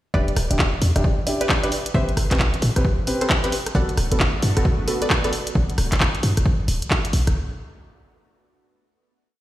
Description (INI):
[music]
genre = UK garage, two-step garage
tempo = 133 BPM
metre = 4/4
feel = swing 63% on 16ths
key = G major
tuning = A4 = 440 Hz
[part]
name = string-like resonator pluck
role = melody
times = 0.1-5.4 s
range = G4 to F#5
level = -31 LUFS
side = equal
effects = chorus, dub echo
[part]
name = dark baby grand piano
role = stabs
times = 0.1-5.3 s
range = B3 to B4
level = -26 LUFS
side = equal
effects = dub echo
[part]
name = short 808-style bass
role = bass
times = 0.1-7.3 s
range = D1 to A2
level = -21 LUFS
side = equal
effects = sidechain pumping
[part]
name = electronic kick drum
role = drums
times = 0.1-7.0 s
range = none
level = -22 LUFS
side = equal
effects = overdrive
[part]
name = garage drum kit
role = drums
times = 0.3-7.3 s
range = handclaps, hi-hat, rim click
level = -24 LUFS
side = equal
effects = none
[part]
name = soft string machine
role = sustained chords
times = 4.0-5.5 s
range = A3 to F#4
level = -34 LUFS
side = right 1 dB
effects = phaser, ensemble chorus, sidechain pumping
[sound]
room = light reverb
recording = played on a big sound system in a bare room, stone room reverb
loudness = -18 LUFS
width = side -15 dB against mid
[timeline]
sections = 0.1-7.4 drop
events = drop 0.1-7.4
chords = 0.1 Em7; 1.7 Am9; 3.5 Gmaj9